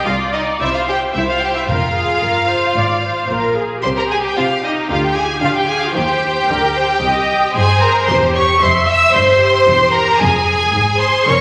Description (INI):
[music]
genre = quick classical-period movement for symphony orchestra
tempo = 112 BPM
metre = 4/4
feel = rubato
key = C minor, F minor from 8.1 s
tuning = A4 = 440 Hz
[part]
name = clear studio violin section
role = melody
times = 0.0-11.4 s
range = Eb5 to E6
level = -19 LUFS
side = equal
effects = none
[part]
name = clear studio violin section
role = second line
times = 0.0-11.4 s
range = Eb4 to E5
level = -20 LUFS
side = equal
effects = none
[part]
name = clear studio viola section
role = accompaniment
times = 0.0-11.4 s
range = G4 to E5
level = -22 LUFS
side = equal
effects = none
[part]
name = clear studio double bass section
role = bass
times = 0.0-11.4 s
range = E1 to D3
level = -25 LUFS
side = equal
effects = none
[part]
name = rich studio cello section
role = bass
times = 0.0-11.4 s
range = C2 to D4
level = -29 LUFS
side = equal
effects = none
[part]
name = timpani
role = percussion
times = 0.0-2.5 s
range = F2 to C3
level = -29 LUFS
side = equal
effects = none
[sound]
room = wet scoring stage reverb, RT60 1.9 s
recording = vinyl crackle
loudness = -15 LUFS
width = mono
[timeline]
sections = 0.0-11.4 A section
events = none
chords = 0.0 Cm; 1.7 Fm; 3.8 C5; 4.9 G5/D; 6.0 Cm; 8.1 C/E; 10.2 Fm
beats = 0.06 0.60 1.14 | 1.68 2.22 2.76 3.30 | 3.84 4.37 4.90 5.42 | 5.95 6.49 7.03 7.55 | 8.08 8.61 9.14 9.67 | 10.20 10.73 11.27